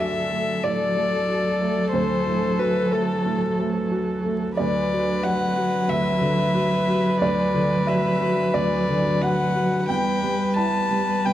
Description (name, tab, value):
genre	neoclassical piano and strings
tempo	90 BPM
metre	4/4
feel	rubato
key	unclear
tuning	A4 = 441 Hz
part	rich violin	melody	0.0-11.3 s	A4 to A5	-26 LUFS	left 4 dB	none
part	dark cello	second line	0.0-11.3 s	F#3 to G3	-25 LUFS	right 1 dB	none
part	dark viola	accompaniment	0.0-11.3 s	A4 to B4	-27 LUFS	right 1 dB	none
part	felt-muted upright piano	accompaniment	0.0-11.3 s	D2 to A5	-25 LUFS	equal	none
room	moderate studio reverb, RT60 0.7 s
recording	dark, warm production, vinyl crackle, faint mains hum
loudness	-20 LUFS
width	side -12 dB against mid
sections	0.0-11.3 A section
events	none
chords	0.0 D; 4.6 Bm/D; 9.9 Em